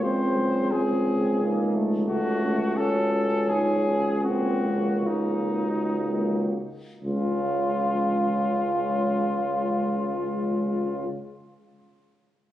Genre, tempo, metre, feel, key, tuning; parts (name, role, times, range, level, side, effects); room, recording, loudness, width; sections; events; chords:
classical, hymn-like piece for brass band; 55-89 BPM; 3/4; rubato; Db major; A4 = 442 Hz
mellow cornet; melody; 0.0-11.1 s; Eb4 to C5; -28 LUFS; left 2 dB
mellow French horn section; second line; 0.0-11.1 s; Db4 to Ab4; -36 LUFS; right 6 dB
clear trombone; accompaniment; 0.0-11.1 s; Db3 to Db4; -30 LUFS; right 1 dB
mellow euphonium; accompaniment; 0.0-11.1 s; Gb3 to Eb4; -32 LUFS; left 1 dB
warm tuba; bass; 0.0-11.1 s; Db2; -27 LUFS; equal
light reverb; recorded on a phone in the room, club reverb, compression, lossy compression artefacts; -22 LUFS; side -12 dB against mid
0.0-7.0 A section; 7.0-12.5 B section
slowing down 1.1-7.0
0.0 Ab/Db; 2.1 Gbm/Db; 4.2 Ab7/Db; 7.0 Db